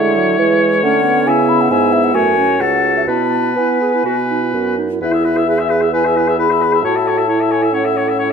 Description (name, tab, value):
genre	quick classical-period movement for wind quintet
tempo	122-138 BPM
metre	4/4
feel	rubato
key	E major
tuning	A4 = 442 Hz
part	mellow hollow concert flute	melody	0.0-8.3 s	E5 to B5	-19 LUFS	left 6 dB	none
part	clear oboe	second line	0.0-8.3 s	A4 to E5	-19 LUFS	left 5 dB	none
part	mellow clarinet	accompaniment	0.0-8.3 s	C#4 to A4	-21 LUFS	right 12 dB	none
part	warm French horn	accompaniment	0.0-8.3 s	F#3 to B4	-19 LUFS	equal	none
part	dark bassoon	bass	0.0-8.3 s	C#2 to B3	-18 LUFS	right 3 dB	none
room	moderate recital hall reverb, RT60 1.8 s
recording	none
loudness	-12 LUFS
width	side -6 dB against mid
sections	0.0-5.0 A section; 5.0-8.3 B section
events	none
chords	0.0 A; 1.3 C#m; 2.1 F#m; 3.1 E/B; 4.1 B; 5.0 E; 6.8 A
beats	0.39 0.83 | 1.26 1.70 2.14 2.60 | 3.08 3.57 4.05 4.54 | 5.01 5.47 5.93 6.38 | 6.83 7.28 7.73 8.18